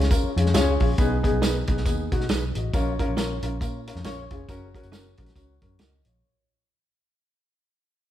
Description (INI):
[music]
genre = uptempo 1960s-style soul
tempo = 137 BPM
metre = 4/4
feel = swing 59% on 8ths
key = unclear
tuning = A4 = 440 Hz
[part]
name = dark upright piano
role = accompaniment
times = 0.0-6.5 s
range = B3 to D#5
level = -28 LUFS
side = left 2 dB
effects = none
[part]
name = vintage muted fingered electric bass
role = bass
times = 0.0-6.2 s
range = E#1 to B2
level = -26 LUFS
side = equal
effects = none
[part]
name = warm soul drum kit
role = drums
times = 0.0-6.1 s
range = hi-hat, kick drum, snare drum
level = -25 LUFS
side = equal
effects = none
[part]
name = tambourine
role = percussion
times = 0.1-5.9 s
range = none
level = -42 LUFS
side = right 4 dB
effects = none
[part]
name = direct-recorded clean electric guitar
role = stabs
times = 0.5-5.9 s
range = C#4 to C#5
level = -32 LUFS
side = right 5 dB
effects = none
[sound]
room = moderate large studio reverb, RT60 1.3 s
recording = band playing live in one room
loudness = -21 LUFS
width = side -12 dB against mid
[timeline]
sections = 0.0-6.2 A section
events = fade-out 0.0-6.2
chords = 0.0 C#; 1.0 G#m/B; 2.7 A#m; 4.5 F#